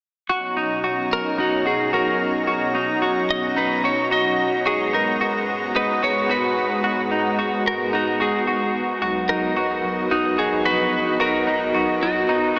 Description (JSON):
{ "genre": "dream pop", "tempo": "110 BPM", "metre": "4/4", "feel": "straight", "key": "B major", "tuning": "A4 = 440 Hz", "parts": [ { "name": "lush unison pad", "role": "sustained chords", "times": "0.3-12.6 s", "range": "G#2 to A#5", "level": "-26 LUFS", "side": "equal", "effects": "chorus" }, { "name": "semi-hollow electric guitar", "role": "arpeggios", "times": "0.3-12.6 s", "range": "D#4 to F#4", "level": "-25 LUFS", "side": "equal", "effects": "lush chorus, tape echo" }, { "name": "clean lap steel guitar", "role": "melody", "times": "1.1-12.6 s", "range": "F#4 to D#5", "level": "-26 LUFS", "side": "equal", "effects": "tape echo" }, { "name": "round analog bass", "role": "bass", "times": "9.0-12.6 s", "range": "A#1 to B1", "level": "-38 LUFS", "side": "equal", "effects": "none" } ], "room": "wet huge ambient reverb, RT60 7.8 s", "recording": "dreamy mix soaked in reverb, small speaker sound", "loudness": "-21 LUFS", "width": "mono", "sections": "0.3-9.0 A section; 9.0-12.6 B section", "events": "none", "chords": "0.3 Bmaj7; 4.7 G#m7; 9.0 Bmaj7", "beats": "| 0.29 0.84 1.38 1.93 | 2.48 3.02 3.57 4.11 | 4.66 5.20 5.75 6.29 | 6.84 7.38 7.93 8.47 | 9.02 9.57 10.11 10.66 | 11.20 11.75 12.29" }